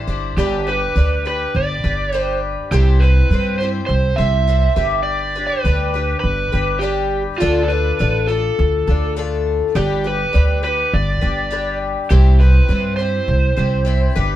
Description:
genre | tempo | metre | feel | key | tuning
folk rock and heartland rock | 102 BPM | 4/4 | straight | unclear | A4 = 440 Hz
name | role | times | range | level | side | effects
picked twelve-string acoustic guitar | accompaniment | 0.0-14.4 s | C3 to C5 | -23 LUFS | left 7 dB | none
upright bass | bass | 0.0-14.4 s | G1 to G2 | -17 LUFS | equal | none
overdriven slide guitar | melody | 0.4-14.1 s | F4 to E5 | -20 LUFS | right 3 dB | none
room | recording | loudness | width
light reverb | band playing live in one room | -15 LUFS | side -13 dB against mid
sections
0.4-14.4 A section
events
none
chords
0.4 G; 2.7 C; 4.8 G; 7.4 Dm; 9.8 G; 12.1 C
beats
| 0.37 0.96 1.55 2.13 | 2.72 3.31 3.89 4.48 | 5.07 5.65 6.24 6.83 | 7.41 8.00 8.59 9.17 | 9.76 10.35 10.93 11.52 | 12.11 12.70 13.28 13.87

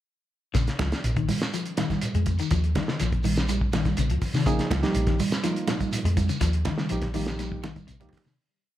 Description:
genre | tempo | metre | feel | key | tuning
afrobeat | 123 BPM | 4/4 | straight | Bb dorian | A4 = 439 Hz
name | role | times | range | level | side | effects
clean electric guitar | arpeggios | 0.5-8.3 s | C3 to Ab3 | -31 LUFS | left 8 dB | lush chorus, tape echo
hollow-body short-scale fingered electric bass | bass | 0.5-8.4 s | Bb1 to Eb3 | -26 LUFS | equal | none
cloth-damped thuddy drum kit | drums | 0.5-8.3 s | hi-hat, kick drum, snare drum | -29 LUFS | equal | none
shekere | percussion | 0.5-8.4 s | none | -36 LUFS | right 1 dB | none
congas | percussion | 0.8-8.4 s | none | -31 LUFS | right 6 dB | none
tine electric piano | accompaniment | 4.5-8.2 s | F3 to Ab4 | -30 LUFS | right 3 dB | none
room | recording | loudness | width
light reverb, studio ambience | none | -23 LUFS | side -13 dB against mid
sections
0.5-8.4 groove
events
fade-out 6.4-8.4; drum fill 8.0-8.4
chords
0.5 Bbm7; 2.5 Eb7sus2; 4.5 Bbm7; 6.4 Ebadd9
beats
| 0.55 1.04 1.53 2.02 | 2.51 3.00 3.49 3.98 | 4.46 4.95 5.44 5.93 | 6.42 6.91 7.39 7.88

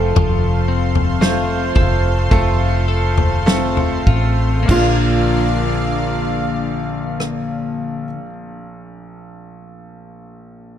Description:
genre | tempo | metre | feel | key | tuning
pop ballad | 48-58 BPM | 4/4 | straight | Bb major | A4 = 440 Hz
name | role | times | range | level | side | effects
flamenco guitar | melody | 0.0-8.1 s | F4 to A4 | -22 LUFS | right 2 dB | none
bright grand piano | accompaniment | 0.0-10.8 s | Bb1 to C5 | -24 LUFS | right 2 dB | none
lush unison pad | sustained chords | 0.0-8.1 s | Bb3 to C6 | -25 LUFS | right 1 dB | chorus
twelve-string electric guitar | arpeggios | 0.0-8.3 s | Bb2 to Bb4 | -24 LUFS | left 9 dB | spring reverb, digital delay
woody fretless electric bass | bass | 0.0-8.1 s | F1 to Bb1 | -19 LUFS | equal | ensemble chorus
natural country drum kit | drums | 0.2-7.5 s | crash cymbal, kick drum, rim click, snare drum, toms | -18 LUFS | equal | none
room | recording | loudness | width
small room ambience | dark, warm production | -15 LUFS | side -10 dB against mid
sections
0.0-4.7 A section; 4.7-9.7 B section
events
slowing down 0.0-4.7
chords
0.0 F; 4.7 Bb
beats
| 0.16 1.22 2.31 3.47 | 4.69 5.94 7.20 8.45

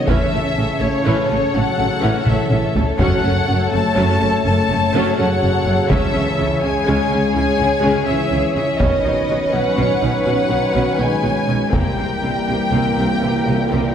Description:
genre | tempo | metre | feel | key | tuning
cinematic, epic orchestral film score | 82 BPM (dotted quarters) | 12/8 | straight | C# minor | A4 = 440 Hz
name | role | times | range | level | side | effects
warm symphonic violin section | melody | 0.0-13.9 s | C#5 to A5 | -22 LUFS | left 3 dB | none
rich symphonic violin section | second line | 0.0-13.9 s | G4 to C#5 | -24 LUFS | left 2 dB | none
mellow French horn section | sustained chords | 0.0-13.9 s | C#3 to A3 | -24 LUFS | left 3 dB | none
warm trombone section | sustained chords | 0.0-13.9 s | C#3 to C#4 | -23 LUFS | right 2 dB | none
warm symphonic viola section | accompaniment | 0.1-13.9 s | E3 to F#4 | -24 LUFS | right 1 dB | none
rich symphonic cello section | bass | 0.1-13.8 s | F#2 to C#3 | -24 LUFS | right 2 dB | none
rich symphonic double bass section | bass | 0.1-13.8 s | F#1 to C#2 | -24 LUFS | right 2 dB | none
taiko ensemble | drums | 0.1-12.2 s | none | -21 LUFS | equal | none
room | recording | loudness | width
wet scoring stage reverb, RT60 1.5 s | heard from further back in the room | -15 LUFS | side -8 dB against mid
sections
0.0-13.9 A section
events
drum fill 2.3-3.0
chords
0.1 A; 3.0 F#m; 5.9 C#m; 8.8 Badd9; 11.7 C7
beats
| 0.09 0.82 1.55 2.28 | 3.00 3.73 4.46 5.18 | 5.91 6.63 7.36 8.08 | 8.81 9.54 10.26 10.99 | 11.73 12.48 13.23

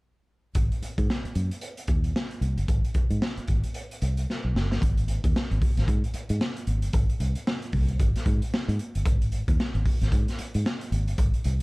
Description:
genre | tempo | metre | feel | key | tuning
funk | 113 BPM | 4/4 | swing 60% on 16ths | Ab major | A4 = 441 Hz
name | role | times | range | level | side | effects
raw garage drum kit | drums | 0.5-11.6 s | hi-hat, kick drum, snare drum | -26 LUFS | equal | none
fingered electric bass | bass | 0.6-11.6 s | Gb1 to Ab2 | -26 LUFS | equal | none
room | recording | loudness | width
little or no reverb | dark, warm production | -24 LUFS | side -26 dB against mid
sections
0.6-4.8 A section; 4.8-11.6 B section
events
drum fill 4.3-4.8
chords
none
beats
| 0.56 1.09 1.62 2.15 | 2.69 3.22 3.75 4.28 | 4.81 5.34 5.88 6.41 | 6.94 7.47 8.00 8.53 | 9.06 9.59 10.12 10.65 | 11.18

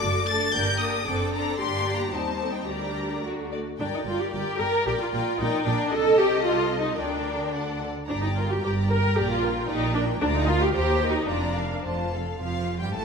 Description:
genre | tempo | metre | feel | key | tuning
quick classical-period movement for string orchestra | 106-116 BPM | 2/4 | rubato | G minor | A4 = 440 Hz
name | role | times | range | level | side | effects
rich studio violin section | melody | 0.0-13.0 s | Eb5 to A6 | -32 LUFS | left 4 dB | none
rich studio violin section | second line | 0.0-13.0 s | F4 to F5 | -31 LUFS | left 3 dB | none
rich studio viola section | accompaniment | 0.0-13.0 s | F3 to Bb4 | -26 LUFS | right 1 dB | none
rich studio cello section | bass | 0.0-13.0 s | D2 to Bb4 | -31 LUFS | right 1 dB | none
rich studio double bass section | bass | 0.0-13.0 s | F1 to Eb2 | -32 LUFS | right 2 dB | none
room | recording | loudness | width
wet scoring stage reverb, RT60 1.8 s | minimal, uncompressed stereo recording | -23 LUFS | side -5 dB against mid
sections
0.0-3.8 A section; 3.8-12.4 B section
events
none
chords
0.0 D/F#; 0.5 Gm; 1.1 D7/F#; 1.6 Gm; 2.1 Cm/Eb; 2.7 Gm/D; 3.2 D; 3.8 Gm; 4.9 Gm/Bb; 5.9 Adim/C; 7.0 Gm/D; 8.1 Gm; 9.2 Gm/Bb; 10.2 Bb/D; 10.7 Cm7/Eb; 11.3 Bb/F; 11.8 F; 12.4 Fadd9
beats
0.01 | 0.54 1.06 | 1.59 2.13 | 2.67 3.24 | 3.79 4.32 | 4.86 5.38 | 5.91 6.44 | 6.98 7.53 | 8.09 8.63 | 9.17 9.69 | 10.21 10.74 | 11.29 11.85 | 12.41 12.94

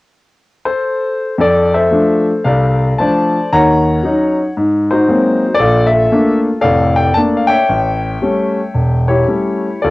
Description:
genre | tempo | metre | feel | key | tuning
solo jazz | 114 BPM | 4/4 | swing 67% on 8ths, rubato | F major | A4 = 440 Hz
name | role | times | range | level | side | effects
clear concert grand piano | solo | 0.7-9.9 s | E1 to Bb5 | -11 LUFS | left 1 dB | none
room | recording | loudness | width
wet booth ambience, RT60 0.2 s | home recording on cassette | -11 LUFS | side -19 dB against mid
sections
0.0-1.4 A section; 1.4-9.9 B section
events
none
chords
0.0 N.C.; 1.4 F6; 3.5 Ebm7; 4.6 Ab9; 5.6 Bbmaj7; 7.7 A7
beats
0.32 0.85 | 1.39 1.93 2.47 3.00 | 3.52 4.04 4.56 5.08 | 5.59 6.11 6.63 7.15 | 7.68 8.22 8.75 9.29 | 9.83

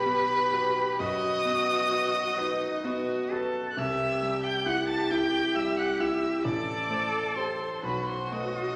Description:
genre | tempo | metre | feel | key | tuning
classical, slow romantic movement for piano quartet | 44 BPM (dotted quarters) | 12/8 | rubato | unclear | A4 = 443 Hz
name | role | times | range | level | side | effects
rich violin | melody | 0.0-8.8 s | B5 to A6 | -32 LUFS | equal | none
rich cello | second line | 0.0-8.8 s | D#4 to A4 | -34 LUFS | equal | none
rich violin | second line | 0.0-8.8 s | B4 to A5 | -36 LUFS | equal | none
clear concert grand piano | accompaniment | 0.0-8.8 s | A1 to E5 | -34 LUFS | equal | none
room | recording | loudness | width
wet recital hall reverb, RT60 1.5 s | vinyl crackle | -28 LUFS | mono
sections
0.0-8.8 A section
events
none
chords
0.0 B; 3.8 C; 6.4 Am7; 7.8 B7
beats
1.00 2.38 | 3.76 5.11 6.45 7.84

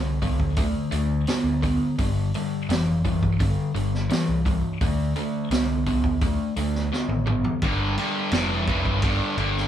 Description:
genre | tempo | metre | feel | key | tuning
blues rock power trio and southern rock | 85 BPM | 4/4 | straight | G mixolydian | A4 = 441 Hz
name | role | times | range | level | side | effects
sludgy distorted guitar | riff | 0.0-9.7 s | G2 to B3 | -25 LUFS | left 1 dB | overdrive
overdriven picked electric bass | bass | 0.0-9.7 s | F1 to D2 | -26 LUFS | equal | none
vintage drum kit | drums | 0.2-9.7 s | hi-hat, kick drum, ride cymbal, snare drum, toms | -27 LUFS | equal | none
room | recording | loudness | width
moderate studio ambience, RT60 0.5 s | band playing live in one room | -21 LUFS | side -10 dB against mid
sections
0.0-7.6 A section; 7.6-9.7 A section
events
drum fill 6.9-7.6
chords
0.0 D5; 2.0 G5; 4.8 D5; 7.6 G5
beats
0.58 1.28 | 1.99 2.69 3.40 4.10 | 4.81 5.51 6.22 6.92 | 7.63 8.33 9.04

